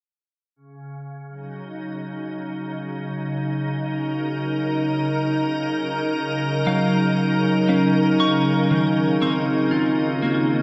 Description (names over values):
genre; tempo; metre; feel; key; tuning
ambient; 59 BPM; 4/4; straight; Gb lydian; A4 = 443 Hz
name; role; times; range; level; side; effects
soft additive organ-like pad; sustained chords; 0.6-10.6 s; Db3 to Bb4; -24 LUFS; equal; ensemble chorus, built-in reverb
clean electric guitar; arpeggios; 6.7-10.6 s; Eb3 to Db6; -23 LUFS; equal; analog chorus, tape echo
room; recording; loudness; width
wet cathedral reverb, RT60 5.1 s; none; -22 LUFS; mono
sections
0.6-10.6 A section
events
none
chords
0.6 Gb6